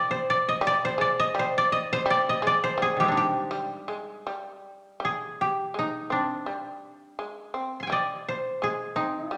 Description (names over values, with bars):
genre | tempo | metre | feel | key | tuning
japanese traditional, Japanese chamber music | 83 BPM | 2/4 | rubato | G miyako bushi | A4 = 440 Hz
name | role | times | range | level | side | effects
koto | melody | 0.0-9.4 s | Eb3 to C6 | -27 LUFS | equal | none
shamisen | second line | 0.0-9.4 s | G3 to C4 | -35 LUFS | equal | none
room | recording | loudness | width
wet recital hall reverb, RT60 1.5 s | none | -27 LUFS | mono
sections
0.0-5.0 A section; 5.0-9.4 B section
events
none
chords
none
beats
| 0.61 1.34 | 2.06 2.78 | 3.50 4.25 | 5.00 5.75 | 6.47 7.18 | 7.90 8.62 | 9.34